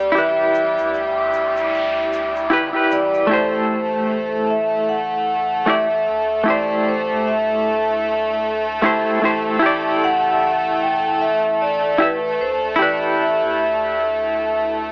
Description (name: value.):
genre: trip hop.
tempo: 76 BPM.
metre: 4/4.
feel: swing 59% on 16ths.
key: A minor.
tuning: A4 = 437 Hz.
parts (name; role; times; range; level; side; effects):
vibraphone with medium hard mallets; melody; 0.0-14.7 s; B4 to G5; -22 LUFS; equal; vintage 12-bit sampler grit, cassette tape, tape echo.
clear studio violin section; sustained chords; 0.0-14.9 s; G3 to A4; -26 LUFS; equal; cassette tape.
round analog bass; bass; 0.0-14.9 s; G1 to D2; -44 LUFS; equal; none.
semi-hollow electric guitar; accompaniment; 0.1-14.9 s; A3 to E5; -23 LUFS; equal; tremolo, vintage 12-bit sampler grit, cassette tape.
noise sweep; sound effects; 1.1-3.3 s; none; -33 LUFS; equal; none.
egg shaker; percussion; 0.2-3.3 s; none; -53 LUFS; equal; none.
room: moderate spring reverb, RT60 1.9 s.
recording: home recording on cassette, AM radio sound.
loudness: -19 LUFS.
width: mono.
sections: 0.0-3.3 A section; 3.3-14.9 B section.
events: noise sweep 1.1-3.3.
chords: 0.0 Em7/A; 3.3 Am7; 9.6 Em7/A.